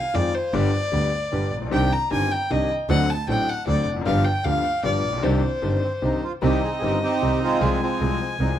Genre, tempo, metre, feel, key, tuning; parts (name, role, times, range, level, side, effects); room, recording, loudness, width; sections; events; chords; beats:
tango; 153 BPM; 3/4; rubato; C minor; A4 = 439 Hz
warm violin; second line; 0.0-8.6 s; C5 to Bb5; -25 LUFS; left 1 dB; tape echo
bright concert grand piano; accompaniment; 0.1-8.6 s; G1 to A4; -26 LUFS; left 5 dB
warm symphonic string section; stabs; 0.1-8.6 s; C4 to C5; -32 LUFS; right 5 dB
clear double bass; bass; 0.1-8.6 s; F1 to F2; -25 LUFS; right 2 dB
bandoneon; melody; 5.8-8.5 s; F3 to Ab4; -24 LUFS; right 3 dB
light reverb; dry, close 1970s-style studio recording; -20 LUFS; side -11 dB against mid
0.0-6.4 A section; 6.4-8.6 B section
violin solo 0.0-6.4
0.0 Fm7; 0.5 G; 1.7 Cmadd9; 2.9 D7; 4.1 G7; 5.2 Cmadd9; 6.4 Cm; 7.6 Fm/C
0.14 | 0.53 0.93 1.32 | 1.73 2.12 2.51 | 2.90 3.29 3.68 | 4.07 4.45 4.85 | 5.24 5.63 6.03 | 6.43 6.83 7.22 | 7.61 8.01 8.40